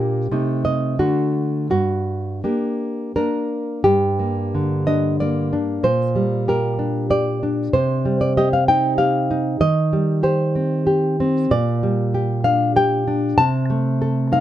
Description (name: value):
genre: romantic piece for solo classical guitar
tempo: 82-98 BPM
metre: 3/4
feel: rubato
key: G minor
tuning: A4 = 442 Hz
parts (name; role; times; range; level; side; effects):
- nylon-string guitar; solo; 0.0-14.4 s; G2 to A5; -17 LUFS; equal; none
room: little or no reverb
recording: close, detailed microphones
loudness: -17 LUFS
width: side -12 dB against mid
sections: 0.0-3.9 A section; 3.9-14.4 A section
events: none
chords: 0.3 Am7b5/C; 1.0 D; 1.7 Gm; 5.8 Gm/Bb; 7.7 Cm; 9.6 Cm/Eb; 11.5 Gm/Bb; 13.4 Am/C